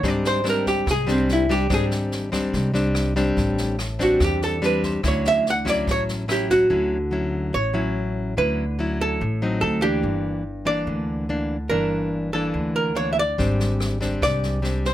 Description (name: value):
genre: bossa nova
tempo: 144 BPM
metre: 4/4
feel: straight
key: unclear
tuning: A4 = 440 Hz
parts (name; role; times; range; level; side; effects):
- archtop guitar, miked and amplified; melody; 0.0-14.9 s; B#3 to F#5; -22 LUFS; right 2 dB; none
- nylon-string guitar; accompaniment; 0.0-14.9 s; G2 to E4; -25 LUFS; left 2 dB; none
- upright bass; bass; 0.0-14.9 s; G1 to E2; -26 LUFS; equal; none
- open jazz drum kit; drums; 0.0-6.6, 13.4-14.9 s; kick drum, rim click, snare drum; -30 LUFS; equal; none
room: light reverb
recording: none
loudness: -20 LUFS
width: side -12 dB against mid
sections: 0.0-6.7 A section; 6.7-14.9 B section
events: hollow-body jazz guitar solo 0.0-6.7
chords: 0.0 G#maj7#11; 3.4 Am7; 5.0 Dmaj9; 9.6 D7b9; 10.0 Gm6; 13.4 G#maj7#11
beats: | 0.03 0.45 0.87 1.28 | 1.70 2.12 2.54 2.95 | 3.37 3.79 4.20 4.62 | 5.04 5.45 5.87 6.29 | 6.70 7.12 7.54 7.96 | 8.37 8.79 9.21 9.62 | 10.04 10.46 10.88 11.29 | 11.71 12.13 12.54 12.96 | 13.38 13.79 14.21 14.63